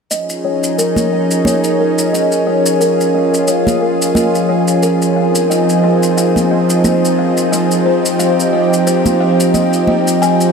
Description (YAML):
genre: sunset chillout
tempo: 89 BPM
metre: 4/4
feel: swing 55% on 16ths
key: unclear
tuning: A4 = 440 Hz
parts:
  - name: lush unison pad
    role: sustained chords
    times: 0.1-10.5 s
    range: F3 to Ab4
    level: -13 LUFS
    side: right 1 dB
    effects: chorus
  - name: buzzing kalimba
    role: arpeggios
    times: 0.1-10.4 s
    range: Bb4 to Ab5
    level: -16 LUFS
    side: left 1 dB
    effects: vintage 12-bit sampler grit, low-pass filter, ping-pong delay
  - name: shaker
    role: drums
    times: 0.1-10.5 s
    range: none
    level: -24 LUFS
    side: left 1 dB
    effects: none
  - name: congas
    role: percussion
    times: 1.0-10.0 s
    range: none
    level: -21 LUFS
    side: right 2 dB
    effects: none
room: wet huge ambient reverb, RT60 7.8 s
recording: dreamy mix soaked in reverb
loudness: -11 LUFS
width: side -5 dB against mid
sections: 0.1-10.5 A section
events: filter sweep on kalimba 0.1-10.5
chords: 0.1 Eb9sus4; 5.2 Ab6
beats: | 0.11 0.78 1.46 2.13 | 2.80 3.48 4.15 4.83 | 5.50 6.17 6.85 7.52 | 8.20 8.87 9.54 10.22